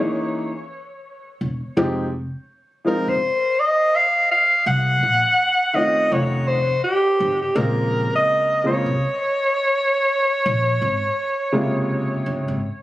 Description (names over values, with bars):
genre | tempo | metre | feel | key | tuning
hip hop, jazz-hop | 83 BPM | 4/4 | swing 61% on 16ths | Bb dorian | A4 = 438 Hz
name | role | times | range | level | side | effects
breathy alto saxophone | melody | 0.0-12.6 s | G4 to Gb5 | -19 LUFS | equal | tape echo
warm upright piano | accompaniment | 0.0-12.6 s | C3 to Ab4 | -22 LUFS | equal | none
upright bass | bass | 1.4-12.6 s | Fb1 to C2 | -24 LUFS | equal | none
room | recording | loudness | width
light reverb | recorded on a phone in the room, studio ambience | -17 LUFS | side -16 dB against mid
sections
0.0-12.8 A section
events
none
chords
0.0 Gb13 (rootless); 1.8 Fm9; 4.7 Cm7b5; 6.1 F7b13; 7.6 Bbm7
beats
0.33 1.05 | 1.77 2.50 3.22 3.94 | 4.67 5.39 6.11 6.84 | 7.56 8.28 9.00 9.73 | 10.45 11.17 11.90